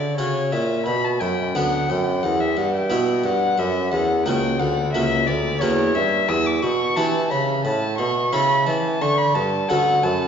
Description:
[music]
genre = classical, baroque-style sonata movement with continuo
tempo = 88 BPM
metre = 4/4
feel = straight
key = unclear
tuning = A4 = 435 Hz
[part]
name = dark violin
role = melody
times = 0.0-10.3 s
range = C#5 to E6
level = -22 LUFS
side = left 2 dB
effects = none
[part]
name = harpsichord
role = accompaniment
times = 0.0-10.3 s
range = C#2 to B4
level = -23 LUFS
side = equal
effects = none
[part]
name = warm bassoon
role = bass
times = 0.0-10.3 s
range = C#2 to E3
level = -23 LUFS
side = right 2 dB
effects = none
[sound]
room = wet recital hall reverb, RT60 1.4 s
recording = heard from further back in the room, nothing above 7.5 kHz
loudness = -18 LUFS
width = side -7 dB against mid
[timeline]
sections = 0.0-10.3 A section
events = none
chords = 0.0 F#; 0.9 Bm; 2.2 Em; 3.6 F#; 6.3 Em7; 7.6 A; 9.0 Dmaj7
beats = 0.17 | 0.86 1.55 2.23 2.91 | 3.58 4.26 4.93 5.61 | 6.29 6.96 7.65 8.33 | 9.01 9.69

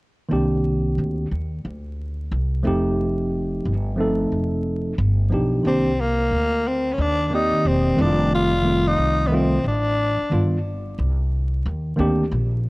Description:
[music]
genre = hip hop, jazz-hop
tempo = 90 BPM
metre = 4/4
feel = swing 59% on 16ths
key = C dorian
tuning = A4 = 439 Hz
[part]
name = tine electric piano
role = accompaniment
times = 0.3-12.2 s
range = Eb3 to D5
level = -22 LUFS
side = equal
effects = none
[part]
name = upright bass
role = bass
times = 0.3-12.7 s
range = E1 to Eb2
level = -23 LUFS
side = equal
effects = none
[part]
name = growling tenor saxophone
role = melody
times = 5.7-10.6 s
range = Bb3 to F4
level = -21 LUFS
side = left 1 dB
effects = none
[sound]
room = light reverb, small room ambience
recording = worn, warbling old tape, cassette tape, vinyl crackle, warbly pitch drift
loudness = -19 LUFS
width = side -23 dB against mid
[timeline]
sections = 0.3-5.6 A section; 5.6-12.7 B section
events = none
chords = 0.3 Cm9; 2.6 F9; 5.0 G7b13; 5.6 Cm9; 8.0 F9; 10.3 G7b13; 11.0 Cm9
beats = | 0.32 0.98 1.65 2.31 | 2.98 3.65 4.32 4.98 | 5.65 6.32 6.98 7.65 | 8.31 8.98 9.65 10.31 | 10.98 11.65 12.31

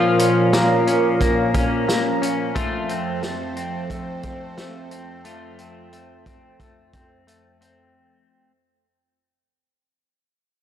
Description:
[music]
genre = dream pop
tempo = 89 BPM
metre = 4/4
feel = straight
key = F major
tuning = A4 = 441 Hz
[part]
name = phased analog pad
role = sustained chords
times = 0.0-7.9 s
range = F2 to F5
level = -23 LUFS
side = right 3 dB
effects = phaser, chorus
[part]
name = electric guitar at the edge of break-up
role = arpeggios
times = 0.0-8.5 s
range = F3 to F4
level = -22 LUFS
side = left 3 dB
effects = analog chorus, analog delay
[part]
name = vintage drum kit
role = drums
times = 0.2-7.8 s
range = hi-hat, kick drum, snare drum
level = -25 LUFS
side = right 1 dB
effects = none
[sound]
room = light reverb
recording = dry, gritty hardware recording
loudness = -18 LUFS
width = side -10 dB against mid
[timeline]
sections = 0.0-7.9 A section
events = fade-out 0.0-7.9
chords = 0.0 Bbm; 2.6 F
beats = 0.53 1.20 1.88 | 2.55 3.23 3.90 4.57 | 5.25 5.92 6.60 7.27

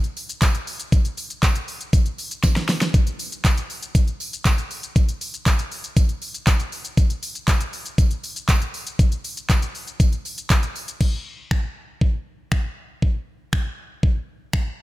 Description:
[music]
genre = pop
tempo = 119 BPM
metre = 4/4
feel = straight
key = none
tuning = none
[part]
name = pop drum kit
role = drums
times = 0.0-14.7 s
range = crash cymbal, finger snaps, handclaps, hi-hat, kick drum, shaker, snare drum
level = -19 LUFS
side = equal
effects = none
[part]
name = tambourine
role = percussion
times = 0.2-10.9 s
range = none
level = -35 LUFS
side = right 4 dB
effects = none
[sound]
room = little or no reverb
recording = none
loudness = -20 LUFS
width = side -17 dB against mid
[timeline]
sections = 0.0-2.9 A section; 2.9-11.0 B section; 11.0-14.8 C section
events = drum fill 2.4-2.9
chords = none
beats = 0.42 | 0.93 1.43 1.93 2.44 | 2.94 3.45 3.95 4.45 | 4.96 5.46 5.97 6.47 | 6.97 7.48 7.98 8.49 | 8.99 9.50 10.00 10.51 | 11.01 11.51 12.02 12.52 | 13.03 13.53 14.03 14.54

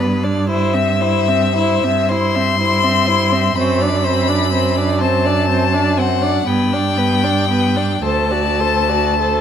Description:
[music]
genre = classical, slow romantic movement for string quartet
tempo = 32-42 BPM (dotted quarters)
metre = 6/8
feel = rubato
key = unclear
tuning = A4 = 440 Hz
[part]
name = clear violin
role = second line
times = 0.0-9.4 s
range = B4 to E5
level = -22 LUFS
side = left 3 dB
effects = none
[part]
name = rich viola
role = accompaniment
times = 0.0-9.4 s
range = B3 to A4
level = -20 LUFS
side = right 2 dB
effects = none
[part]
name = rich cello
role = bass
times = 0.0-9.4 s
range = D2 to G2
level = -18 LUFS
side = right 3 dB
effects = none
[part]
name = rich violin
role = melody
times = 0.5-9.4 s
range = E5 to C6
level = -19 LUFS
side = left 8 dB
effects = none
[sound]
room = moderate recital hall reverb, RT60 1.6 s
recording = close, detailed microphones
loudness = -14 LUFS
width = side -8 dB against mid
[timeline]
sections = 0.0-9.4 A section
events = none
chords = 0.5 C/G; 3.6 D7/F#; 6.5 G; 8.0 D7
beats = | 0.49 2.09 | 3.56 5.00 | 6.47 8.03

